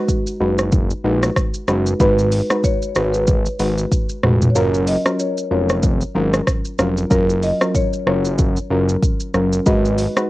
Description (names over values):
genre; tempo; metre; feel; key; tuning
afrobeats; 94 BPM; 4/4; swing 58% on 16ths; F# major; A4 = 440 Hz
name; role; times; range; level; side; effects
soft round pluck; accompaniment; 0.0-10.3 s; F#3 to B4; -20 LUFS; equal; chorus, plate reverb
afro-pop drum kit; drums; 0.1-10.3 s; hi-hat, kick drum, rim click, shaker, toms; -19 LUFS; equal; cassette tape
fat analog bass; bass; 0.4-10.1 s; E#1 to A#1; -20 LUFS; equal; none
marimba with medium mallets; melody; 2.0-10.3 s; A#4 to D#5; -22 LUFS; equal; cassette tape, plate reverb, tape echo
room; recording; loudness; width
light reverb; home recording on cassette, lossy compression artefacts; -15 LUFS; side -18 dB against mid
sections
0.0-10.3 A section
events
kick muted 4.6-5.8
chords
0.0 G#m7; 4.6 F#maj7; 9.7 G#m7